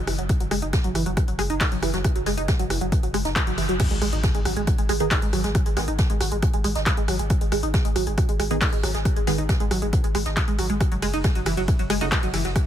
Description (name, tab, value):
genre	driving peak-time techno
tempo	137 BPM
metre	4/4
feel	straight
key	G# minor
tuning	A4 = 440 Hz
part	saturated sub bass	bass	0.0-12.6 s	F#1 to G#1	-28 LUFS	equal	sidechain pumping, low-pass filter
part	tight sequenced synth	riff	0.1-12.5 s	E3 to D#4	-27 LUFS	right 2 dB	chorus, phaser, sidechain pumping, tape echo
part	jazz brush drum kit	drums	0.1-12.7 s	hi-hat, snare drum	-36 LUFS	right 2 dB	high-pass filter on hats, high-pass filter on snare, high-pass filter on room
part	punchy analog drum machine	drums	0.1-12.6 s	crash cymbal, handclaps, hi-hat, ride cymbal, rim click	-28 LUFS	equal	none
part	electronic kick drum	drums	0.3-12.6 s	none	-23 LUFS	equal	none
part	impact	sound effects	3.8-5.5 s	none	-33 LUFS	left 1 dB	none
part	filtered dub chord stab	stabs	5.0-12.1 s	C#3 to G#4	-30 LUFS	right 3 dB	phaser, sidechain pumping, dub echo
room	little or no reverb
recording	none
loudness	-20 LUFS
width	side -10 dB against mid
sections	0.0-3.8 A section; 3.8-12.7 B section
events	band accent 3.4; drop 3.8-12.7; impact 3.8-5.5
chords	0.0 N.C.; 3.8 G#5; 10.8 N.C.